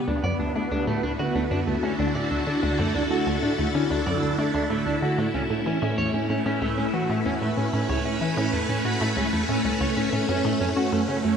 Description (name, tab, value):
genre	ambient, sequencer-driven space music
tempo	94 BPM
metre	4/4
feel	straight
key	D major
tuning	A4 = 437 Hz
part	phased string machine	sustained chords	0.0-11.4 s	A2 to B4	-25 LUFS	equal	ensemble chorus, phaser, shimmer reverb
part	resonant blip pluck	riff	0.0-11.3 s	C#2 to C#4	-28 LUFS	equal	chorus, tape echo
part	electric guitar at the edge of break-up	arpeggios	0.1-11.3 s	A3 to D5	-28 LUFS	right 2 dB	auto-pan, shimmer reverb, tape echo
room	wet plate reverb, RT60 3.6 s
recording	none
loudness	-22 LUFS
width	side -7 dB against mid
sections	0.0-11.4 A section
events	none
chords	0.1 Dadd9; 5.2 Aadd9; 10.3 F#m